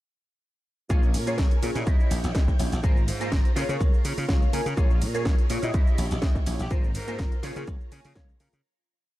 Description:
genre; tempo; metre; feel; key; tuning
filtered disco house; 124 BPM; 4/4; swing 53% on 16ths; unclear; A4 = 440 Hz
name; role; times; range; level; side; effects
funky polysynth comp; accompaniment; 0.9-8.5 s; Bb3 to Eb5; -33 LUFS; left 1 dB; chorus, phaser, sidechain pumping
string machine, full ensemble; sustained chords; 0.9-8.6 s; Db4 to Bb5; -38 LUFS; equal; ensemble chorus, vintage 12-bit sampler grit, sidechain pumping
electric guitar with an envelope filter; riff; 0.9-8.4 s; Fb4 to Ab5; -37 LUFS; right 2 dB; analog chorus, sidechain pumping
glassy slap bass; bass; 0.9-8.6 s; Ab1 to Db3; -30 LUFS; equal; sidechain pumping
electronic kick drum; drums; 0.9-8.3 s; none; -23 LUFS; equal; overdrive
house drum kit; drums; 0.9-8.6 s; cabasa, hi-hat, ride cymbal, snare drum; -35 LUFS; right 1 dB; overdrive, sidechain pumping on hats, sidechain pumping on perc, sidechain pumping on cymbals
clear horn section; melody; 4.9-7.4 s; F4 to Bb4; -43 LUFS; equal; sidechain pumping
room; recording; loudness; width
digital ambience; dark, warm production; -22 LUFS; side -16 dB against mid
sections
0.9-8.6 drop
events
drop 0.9-8.6; clean electric guitar fill 4.0-4.8, 7.7-8.6; fade-out 6.1-8.6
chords
0.9 Bbm7; 1.9 Eb7b9; 2.8 Ab69; 3.6 Db6; 4.8 Bbm7; 5.7 Eb7b9; 6.7 Ab69; 7.4 Db6

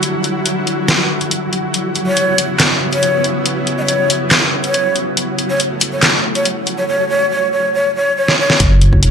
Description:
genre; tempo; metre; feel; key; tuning
deep dubstep; 140 BPM; 4/4; half-time; unclear; A4 = 442 Hz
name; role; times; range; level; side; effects
bowed-like drone; sustained chords; 0.0-9.1 s; C#3 to F#4; -22 LUFS; equal; built-in reverb
dubstep drum kit; drums; 0.0-9.1 s; handclaps, hi-hat, snare drum; -14 LUFS; equal; none
flickering grainy texture; texture; 0.0-6.9 s; F#3 to F#4; -22 LUFS; equal; built-in reverb
breathy ney; melody; 2.1-8.6 s; C#5 to D#5; -16 LUFS; equal; dub echo
dark detuned saw bass; bass; 8.6-9.1 s; E1 to F#1; -11 LUFS; equal; none
electronic kick drum; drums; 8.6-9.0 s; none; -13 LUFS; equal; none
room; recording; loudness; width
moderate digital room reverb, RT60 1.2 s, digital ambience; lossy compression artefacts; -12 LUFS; side -7 dB against mid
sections
0.0-8.6 A section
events
build-up 0.0-8.6; drum fill 8.3-8.6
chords
0.0 Dadd9; 1.7 C#m7; 5.2 A; 8.6 F#m

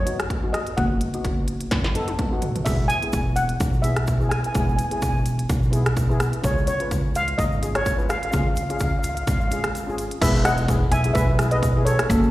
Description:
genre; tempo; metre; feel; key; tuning
calypso; 127 BPM; 4/4; swing 54% on 16ths; E major; A4 = 440 Hz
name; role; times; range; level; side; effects
steel pan; melody; 0.0-12.3 s; A4 to G#5; -26 LUFS; equal; slapback echo
steel pan; accompaniment; 0.0-12.3 s; B3 to B4; -30 LUFS; left 2 dB; slapback echo
upright bass; bass; 0.0-12.3 s; E1 to F#2; -24 LUFS; equal; none
industrial drum kit; drums; 0.1-12.2 s; crash cymbal, hi-hat, kick drum, rim click, snare drum, splash cymbal, toms; -24 LUFS; equal; none
tube shaker; percussion; 2.7-12.3 s; none; -40 LUFS; right 2 dB; none
room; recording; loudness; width
light reverb; live gig heard through the venue's PA, recital hall reverb; -20 LUFS; side -16 dB against mid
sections
0.0-10.2 A section; 10.2-12.3 B section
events
drum fill 1.7-2.7; break 9.7-10.2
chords
0.0 B/F#; 2.7 E; 6.4 C#; 10.2 Emaj7

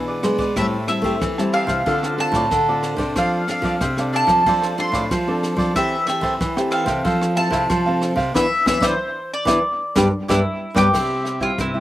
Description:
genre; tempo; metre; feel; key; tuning
samba and choro; 93 BPM; 4/4; straight; A minor; A4 = 440 Hz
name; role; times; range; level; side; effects
nylon-string guitar; accompaniment; 0.0-11.8 s; G2 to A4; -24 LUFS; left 2 dB; slapback echo
nylon-string guitar; bass; 0.0-11.8 s; G2 to A3; -23 LUFS; equal; none
cavaquinho; accompaniment; 0.1-11.8 s; D4 to A5; -25 LUFS; right 2 dB; slapback echo
jazz brush drum kit; drums; 0.2-11.7 s; crash cymbal, hi-hat, kick drum, ride cymbal, rim click, snare drum; -28 LUFS; equal; none
mandolin; melody; 0.6-11.8 s; E4 to C6; -21 LUFS; equal; slapback echo
room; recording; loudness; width
little or no reverb; recorded outdoors, with no room sound; -17 LUFS; side -14 dB against mid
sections
0.0-10.9 A section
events
band accent 8.4-10.9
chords
0.0 E7; 0.6 Am7; 1.9 Dm7; 3.2 F6; 4.5 Dm7; 5.8 Am7/E; 7.1 Fmaj7; 8.4 E5; 9.6 G; 10.9 C

